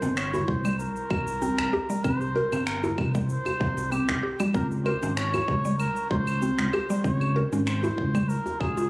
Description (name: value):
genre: organic downtempo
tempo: 96 BPM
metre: 4/4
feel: swing 53% on 16ths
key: C phrygian dominant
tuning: A4 = 440 Hz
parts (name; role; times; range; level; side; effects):
- trumpet with cup mute; melody; 0.0-8.9 s; G4 to Db5; -31 LUFS; equal; ping-pong delay
- mallet-like synth pluck; arpeggios; 0.0-8.9 s; G3 to Bb4; -28 LUFS; equal; chorus, phaser, cassette tape, digital delay
- smooth synth bass; bass; 0.0-8.9 s; G1 to Db2; -28 LUFS; equal; sidechain pumping
- electronic shaker, finger snaps and claves; drums; 0.0-8.9 s; none; -33 LUFS; equal; overdrive
- djembe; percussion; 0.0-8.9 s; none; -34 LUFS; equal; none
- electronic kick drum; drums; 0.5-8.7 s; none; -31 LUFS; equal; overdrive
room: light reverb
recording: recorded on a phone in the room, club ambience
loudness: -24 LUFS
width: side -23 dB against mid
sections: 0.0-8.9 A section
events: none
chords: 0.0 C; 4.5 Db5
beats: 0.17 0.79 1.42 | 2.04 2.67 3.29 3.92 | 4.54 5.17 5.79 6.42 | 7.04 7.67 8.29